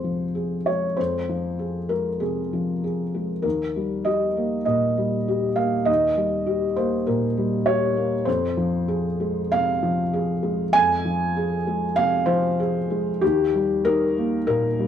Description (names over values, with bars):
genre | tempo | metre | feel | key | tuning
neoclassical minimalist piano | 98 BPM | 4/4 | rubato | F minor | A4 = 441 Hz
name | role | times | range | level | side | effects
felt-muted upright piano | solo | 0.0-14.9 s | Eb2 to Ab5 | -20 LUFS | equal | none
room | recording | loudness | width
moderate stone room reverb, RT60 1.1 s | band playing live in one room, nothing above 10.7 kHz | -20 LUFS | side -9 dB against mid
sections
0.0-14.9 A section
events
none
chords
0.0 Fm; 3.4 Eb; 8.3 Fm; 13.2 Eb